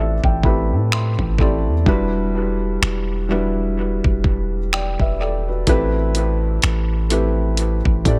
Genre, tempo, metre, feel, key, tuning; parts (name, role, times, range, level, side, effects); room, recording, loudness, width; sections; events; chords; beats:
contemporary R&B; 63 BPM; 4/4; swing 58% on 16ths; E minor; A4 = 437 Hz
felt-muted upright piano; accompaniment; 0.0-8.2 s; G3 to C6; -24 LUFS; equal; dub echo
long sustained 808-style bass; bass; 0.0-8.2 s; E1 to A2; -23 LUFS; equal
dusty soul sampler-style drum kit; drums; 0.2-8.2 s; finger snaps, hi-hat, kick drum; -22 LUFS; equal; dub echo
little or no reverb; echo-heavy mix; -19 LUFS; mono
0.0-8.2 A section
felt piano fill 0.0-1.9
0.0 Am7; 1.9 Em7; 5.7 Am7
0.91 | 1.86 2.82 3.77 4.72 | 5.67 6.62 7.58